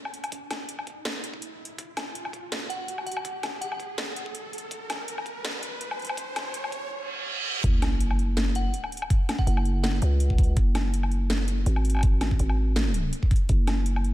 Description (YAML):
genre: half-time drum and bass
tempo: 164 BPM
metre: 4/4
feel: swing 54% on 16ths, half-time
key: unclear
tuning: A4 = 444 Hz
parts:
  - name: riser, reverse cymbal and sub drop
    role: sound effects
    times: 0.0-9.1 s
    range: none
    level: -35 LUFS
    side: right 2 dB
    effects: none
  - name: drum and bass drum kit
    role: drums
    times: 0.1-14.1 s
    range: hi-hat, snare drum, woodblock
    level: -32 LUFS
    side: left 1 dB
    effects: high-pass filter on hats, high-pass filter on snare, high-pass filter on perc, high-pass filter on room
  - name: electronic kick drum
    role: drums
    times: 0.3-13.6 s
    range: none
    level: -22 LUFS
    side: equal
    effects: high-pass filter on kick, high-pass filter on room
  - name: glassy synth bell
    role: melody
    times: 2.7-4.0, 8.6-10.3 s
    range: F#5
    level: -38 LUFS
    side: equal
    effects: chorus, tremolo, tape echo
  - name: growling 808-style bass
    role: bass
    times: 7.6-14.1 s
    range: F#1 to C#2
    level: -24 LUFS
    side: equal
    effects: none
room: light reverb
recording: high-pass filter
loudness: -24 LUFS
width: side -16 dB against mid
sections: 0.0-7.6 A section; 7.6-14.1 B section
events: build-up 0.0-7.6; riser 0.0-6.9; reverse cymbal 6.9-7.6; drop 7.6-14.1; impact 7.6-9.1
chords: 0.0 N.C.; 7.6 F#sus2